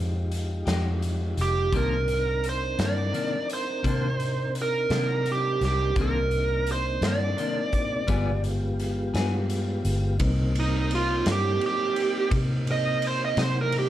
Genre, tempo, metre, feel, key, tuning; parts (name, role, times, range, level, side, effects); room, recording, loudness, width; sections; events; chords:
slow blues; 57 BPM (dotted quarters); 12/8; straight; C minor; A4 = 439 Hz
dark smooth lead guitar; melody; 0.0-13.9 s; Eb4 to Eb5; -26 LUFS; right 4 dB; overdrive, plate reverb
mellow tonewheel organ; sustained chords; 0.0-13.9 s; Ab3 to Bb4; -33 LUFS; left 1 dB; slow rotary speaker, plate reverb
vintage muted fingered electric bass; bass; 0.0-13.9 s; F1 to C3; -26 LUFS; equal
raw garage drum kit; drums; 0.3-13.9 s; hi-hat, kick drum, ride cymbal, snare drum; -32 LUFS; equal
clean electric guitar; accompaniment; 0.7-9.4 s; C3 to Ab4; -32 LUFS; left 5 dB; tremolo, plate reverb
moderate studio reverb, RT60 0.5 s; -23 LUFS; side -12 dB against mid
0.0-10.2 A section; 10.2-13.9 B section
lead electric guitar solo 10.2-13.9
0.0 Fm9; 1.7 Cm9; 8.1 G7b9; 10.2 Cm7